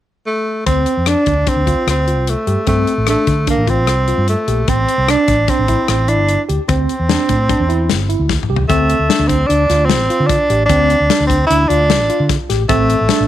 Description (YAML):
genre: progressive instrumental, band music in an uneven meter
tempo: 150 BPM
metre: 5/4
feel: straight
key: unclear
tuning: A4 = 439 Hz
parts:
  - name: warm tenor saxophone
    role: melody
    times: 0.3-13.3 s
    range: A3 to E4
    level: -16 LUFS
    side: right 1 dB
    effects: none
  - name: tine electric piano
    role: arpeggios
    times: 0.7-13.3 s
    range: C4 to G4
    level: -20 LUFS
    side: right 1 dB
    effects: slow stereo tremolo, slapback echo
  - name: fretless electric bass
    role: bass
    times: 0.7-13.3 s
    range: G1 to D3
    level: -17 LUFS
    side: equal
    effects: none
  - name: modern studio drum kit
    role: drums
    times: 0.7-13.2 s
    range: hi-hat, kick drum, rim click, snare drum, toms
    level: -19 LUFS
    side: left 4 dB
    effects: none
room: light reverb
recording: 1960s-style stereo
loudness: -12 LUFS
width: side -12 dB against mid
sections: 0.7-8.7 A section; 8.7-13.3 B section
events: drum fill 8.3-8.7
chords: 0.0 N.C.; 0.7 Dm7; 4.7 Am7; 8.7 Dm7; 12.7 Am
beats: 0.27 | 0.67 1.07 1.47 1.88 2.28 | 2.68 3.08 3.48 3.88 4.28 | 4.68 5.09 5.49 5.89 6.29 | 6.69 7.09 7.49 7.89 8.29 | 8.69 9.09 9.49 9.89 10.29 | 10.69 11.09 11.49 11.89 12.29 | 12.69 13.09